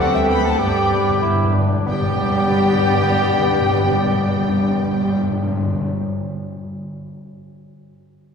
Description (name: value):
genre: quick classical-period movement for symphony orchestra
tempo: 94 BPM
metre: 2/4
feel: straight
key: G major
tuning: A4 = 440 Hz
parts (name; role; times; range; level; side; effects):
- rich chamber violin section; melody; 0.0-5.2 s; F#5 to B5; -26 LUFS; equal; none
- clear oboe; second line; 0.0-5.2 s; D5 to G5; -30 LUFS; right 1 dB; none
- mellow small flute group; second line; 0.0-5.2 s; D5 to B5; -30 LUFS; left 1 dB; none
- rich chamber violin section; second line; 0.0-5.2 s; G4 to G5; -30 LUFS; left 3 dB; none
- warm clarinet; second line; 0.0-5.2 s; G4 to A4; -28 LUFS; equal; none
- rich studio viola section; accompaniment; 0.0-5.2 s; G3 to B4; -27 LUFS; equal; none
- warm bassoon; accompaniment; 0.0-5.2 s; B3 to E4; -27 LUFS; right 1 dB; none
- mellow French horn section; sustained chords; 0.0-5.2 s; B3 to A4; -25 LUFS; left 4 dB; none
- mellow trumpet; stabs; 0.0-5.2 s; F#4 to B4; -26 LUFS; left 1 dB; none
- rich chamber double bass section; bass; 0.0-5.2 s; D2 to G2; -26 LUFS; right 2 dB; none
- warm chamber cello section; bass; 0.0-5.2 s; F#3 to B3; -27 LUFS; right 2 dB; none
- timpani; percussion; 0.6-5.9 s; G2; -21 LUFS; left 1 dB; none
room: wet church reverb, RT60 2.9 s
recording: minimal, uncompressed stereo recording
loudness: -16 LUFS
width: side -6 dB against mid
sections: 0.0-1.9 A section; 1.9-4.4 B section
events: slowing down 0.0-1.9; timpani fill 0.6-1.9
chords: 0.0 D7; 0.6 G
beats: | 0.60 1.22 | 1.87 2.51 | 3.14 3.78